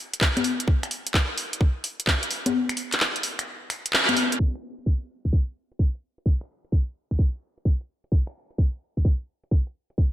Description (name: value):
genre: UK garage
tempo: 129 BPM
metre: 4/4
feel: swing 67% on 16ths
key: none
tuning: none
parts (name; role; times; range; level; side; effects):
- garage drum kit; drums; 0.1-10.0 s; congas, crash cymbal, finger snaps, handclaps, hi-hat; -23 LUFS; left 1 dB; none
- electronic kick drum; drums; 0.2-10.1 s; none; -21 LUFS; equal; none
room: moderate lush hall reverb, RT60 2.1 s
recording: dreamy mix soaked in reverb, low-pass filter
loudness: -23 LUFS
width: side -13 dB against mid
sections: 0.0-4.4 A section; 4.4-10.1 B section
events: kick drops out 2.5-4.4; band accent 3.9; filter sweep 4.4-10.1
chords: none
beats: 0.21 | 0.68 1.14 1.61 2.07 | 2.54 3.00 3.47 3.93 | 4.40 4.86 5.33 5.79 | 6.26 6.72 7.19 7.65 | 8.12 8.58 9.05 9.51 | 9.98